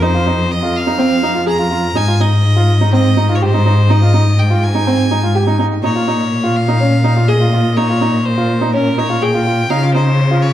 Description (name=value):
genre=piano and strings electronica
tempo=124 BPM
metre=4/4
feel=straight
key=unclear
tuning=A4 = 440 Hz
part: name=bright violin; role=melody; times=0.0-10.5 s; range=Bb4 to Bb5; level=-20 LUFS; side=left 1 dB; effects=digital delay
part: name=clear upright piano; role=riff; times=0.0-10.4 s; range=C4 to Ab4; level=-17 LUFS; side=right 2 dB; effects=none
part: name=rich studio cello section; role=bass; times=0.0-10.5 s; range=F2 to Db3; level=-14 LUFS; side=left 1 dB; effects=none
room=light reverb, small room ambience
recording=dark, warm production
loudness=-11 LUFS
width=side -12 dB against mid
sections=0.0-10.5 A section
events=none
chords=0.0 F7(no3); 2.0 Ab5; 5.8 Bbm; 9.7 Dbmaj7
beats=| 0.03 0.51 0.99 1.48 | 1.96 2.44 2.93 3.41 | 3.90 4.38 4.86 5.35 | 5.83 6.32 6.80 7.28 | 7.77 8.25 8.73 9.22 | 9.70 10.19